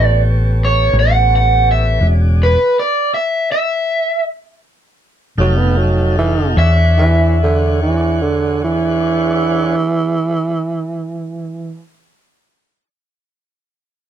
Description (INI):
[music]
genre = slow blues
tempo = 49-56 BPM (dotted quarters)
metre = 12/8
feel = straight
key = E mixolydian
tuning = A4 = 440 Hz
[part]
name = overdriven semi-hollow guitar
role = melody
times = 0.0-9.8 s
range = B4 to F#5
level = -15 LUFS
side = equal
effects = none
[part]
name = tonewheel organ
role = sustained chords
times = 0.0-9.8 s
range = C#3 to G5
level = -23 LUFS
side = left 1 dB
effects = slow rotary speaker
[part]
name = hollow-body short-scale fingered electric bass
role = bass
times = 0.0-9.7 s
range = E1 to E2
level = -14 LUFS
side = equal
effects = none
[part]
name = growling tenor saxophone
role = second line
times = 5.4-11.8 s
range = D3 to B3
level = -16 LUFS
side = right 3 dB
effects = none
[sound]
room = light reverb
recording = dark, warm production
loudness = -12 LUFS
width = side -10 dB against mid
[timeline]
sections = 0.0-6.6 A section; 6.6-11.5 B section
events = slowing down 0.6-6.6; stop 2.0-5.4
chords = 0.0 A9; 2.0 E13; 5.4 F9; 6.6 E13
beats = 0.94 | 2.02 3.11 4.23 5.38 | 6.58 7.80 9.02 10.24